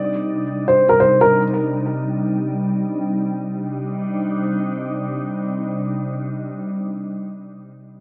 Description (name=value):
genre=hip hop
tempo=free time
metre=none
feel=none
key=C minor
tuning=A4 = 440 Hz
part: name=dark baby grand piano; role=melody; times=0.0-1.4 s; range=Bb4 to D5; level=-18 LUFS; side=equal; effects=low-pass filter, analog delay
part: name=glassy FM pad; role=sustained chords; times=0.0-6.5 s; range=C3 to Eb4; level=-24 LUFS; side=equal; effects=ensemble chorus, built-in reverb
room=light reverb, digital ambience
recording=echo-heavy mix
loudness=-21 LUFS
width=mono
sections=0.0-6.6 A section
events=none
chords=0.0 Cmadd9